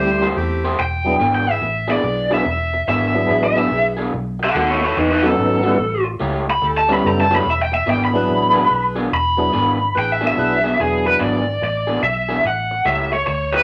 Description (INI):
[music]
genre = electric blues shuffle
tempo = 144 BPM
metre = 4/4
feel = swing 64% on 8ths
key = E mixolydian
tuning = A4 = 440 Hz
[part]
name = lead guitar through a small cranked amp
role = melody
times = 0.0-13.6 s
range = D#4 to B5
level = -20 LUFS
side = equal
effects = overdrive
[part]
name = tonewheel organ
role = accompaniment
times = 0.0-11.4 s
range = F#3 to B4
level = -23 LUFS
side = equal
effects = slow rotary speaker, overdrive, chorus vibrato
[part]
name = mellow saxophone section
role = stabs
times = 0.0-10.8 s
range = A3 to B4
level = -29 LUFS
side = equal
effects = none
[part]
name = vintage muted fingered electric bass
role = bass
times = 0.0-13.6 s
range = E1 to E2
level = -27 LUFS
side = equal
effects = none
[part]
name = electric guitar through a small old amp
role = riff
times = 0.2-13.6 s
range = B2 to C#5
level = -26 LUFS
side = equal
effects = none
[sound]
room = wet club reverb, RT60 0.7 s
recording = faint mains hum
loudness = -18 LUFS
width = mono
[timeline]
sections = 0.0-10.8 A section; 10.8-13.6 B section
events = lead electric guitar solo 0.0-10.8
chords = 0.0 Am7; 0.8 E7; 4.1 B7; 5.8 A7; 7.5 E7; 12.4 A7